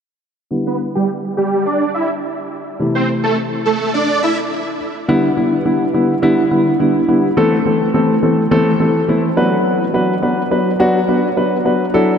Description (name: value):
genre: pop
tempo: 105 BPM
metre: 4/4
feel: straight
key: E minor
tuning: A4 = 440 Hz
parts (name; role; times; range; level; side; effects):
- dark baby grand piano; accompaniment; 0.5-12.1 s; C3 to B4; -14 LUFS; left 1 dB; low-pass filter
- supersaw chords; melody; 0.7-4.4 s; G3 to E5; -17 LUFS; right 2 dB; ensemble chorus, low-pass filter, tape echo
room: wet huge ambient reverb, RT60 4.0 s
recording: dreamy mix soaked in reverb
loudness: -13 LUFS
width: side -7 dB against mid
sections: 0.5-5.1 A section; 5.1-12.2 B section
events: filter sweep 0.5-5.1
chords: 0.5 Em7; 2.8 Am; 4.8 N.C.; 5.1 Em7; 7.4 Am; 9.4 Bm